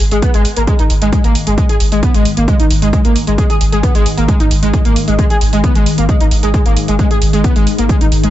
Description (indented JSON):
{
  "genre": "driving peak-time techno",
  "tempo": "133 BPM",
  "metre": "4/4",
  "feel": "straight",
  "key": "unclear",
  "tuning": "A4 = 440 Hz",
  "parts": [
    { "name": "warm sub bass", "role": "bass", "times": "0.0-8.3 s", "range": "G#1", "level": "-15 LUFS", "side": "equal", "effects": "overdrive, sidechain pumping, low-pass filter" },
    { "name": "deep dark ambient pad", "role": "drone", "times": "1.0-8.3 s", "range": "G#2 to D#3", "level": "-20 LUFS", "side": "left 2 dB", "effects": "chorus, built-in reverb, sidechain pumping" },
    { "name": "electronic hi-hat", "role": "drums", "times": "0.0-8.3 s", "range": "none", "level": "-24 LUFS", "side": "right 3 dB", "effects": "sidechain pumping on hats" },
    { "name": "overdriven synth lead", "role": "riff", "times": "0.1-8.3 s", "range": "G#3 to G#4", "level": "-16 LUFS", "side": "equal", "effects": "distortion, ensemble chorus, sidechain pumping, digital delay" },
    { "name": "electronic kick drum", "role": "drums", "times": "0.2-8.0 s", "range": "none", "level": "-13 LUFS", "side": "equal", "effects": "none" }
  ],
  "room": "digital ambience",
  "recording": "nothing above 8.0 kHz",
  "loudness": "-10 LUFS",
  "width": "side -13 dB against mid",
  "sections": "0.0-8.3 A section",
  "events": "none",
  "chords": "0.0 G#5"
}